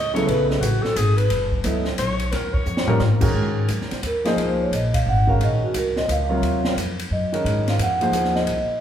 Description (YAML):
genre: modal jazz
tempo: 176 BPM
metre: 3/4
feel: swing 64% on 8ths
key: B mixolydian, Ab mixolydian from 3.3 s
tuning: A4 = 441 Hz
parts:
  - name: clear alto saxophone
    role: second line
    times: 0.0-3.0 s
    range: D#4 to D#5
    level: -25 LUFS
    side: left 2 dB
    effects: none
  - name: upright bass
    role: bass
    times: 0.0-8.7 s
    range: F#1 to Ab2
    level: -24 LUFS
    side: equal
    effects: none
  - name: warm grand piano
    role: accompaniment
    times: 0.1-8.5 s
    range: C3 to D#5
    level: -24 LUFS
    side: equal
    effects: none
  - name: open jazz drum kit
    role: drums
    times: 0.2-8.6 s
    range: crash cymbal, hi-hat, kick drum, ride cymbal, snare drum, toms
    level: -25 LUFS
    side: equal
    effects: none
  - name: vibraphone with soft mallets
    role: melody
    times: 4.1-8.8 s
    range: Gb4 to Gb5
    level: -23 LUFS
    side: right 1 dB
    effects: none
room: wet large studio reverb, RT60 1.1 s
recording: band playing live in one room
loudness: -18 LUFS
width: side -10 dB against mid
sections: 0.0-3.3 A section; 3.3-8.8 A section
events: alto saxophone solo 0.0-3.3; drum fill 2.7-3.0; vibraphone solo 3.3-8.8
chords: 0.0 B7sus2; 2.3 D#7; 3.3 Ab9; 5.4 Ebm; 7.4 Ab9